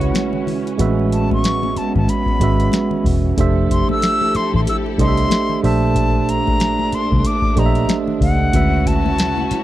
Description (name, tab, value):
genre	R&B, neo-soul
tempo	93 BPM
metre	4/4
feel	swing 60% on 16ths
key	A major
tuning	A4 = 440 Hz
part	silver concert flute	melody	0.0-9.6 s	F#5 to E6	-21 LUFS	left 2 dB	none
part	tine electric piano	accompaniment	0.0-9.6 s	G#3 to E5	-20 LUFS	right 6 dB	none
part	dark studio string section	sustained chords	0.0-9.6 s	Bb2 to A4	-27 LUFS	left 3 dB	none
part	vintage muted fingered electric bass	bass	0.0-9.5 s	E1 to D2	-18 LUFS	left 1 dB	none
part	booming analog drum machine	drums	0.0-9.6 s	hi-hat, kick drum, snare drum	-21 LUFS	left 1 dB	none
part	congas	percussion	0.1-9.5 s	none	-29 LUFS	left 12 dB	none
room	little or no reverb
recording	dry, close 1970s-style studio recording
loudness	-14 LUFS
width	side -14 dB against mid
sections	0.0-9.6 A section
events	none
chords	0.0 Dmaj9 (rootless); 0.8 Amaj9; 3.4 Fmaj9; 5.6 Bbmaj9; 8.5 Dmaj9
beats	0.14 | 0.79 1.44 2.08 2.73 | 3.37 4.02 4.66 5.31 | 5.95 6.60 7.24 7.89 | 8.53 9.18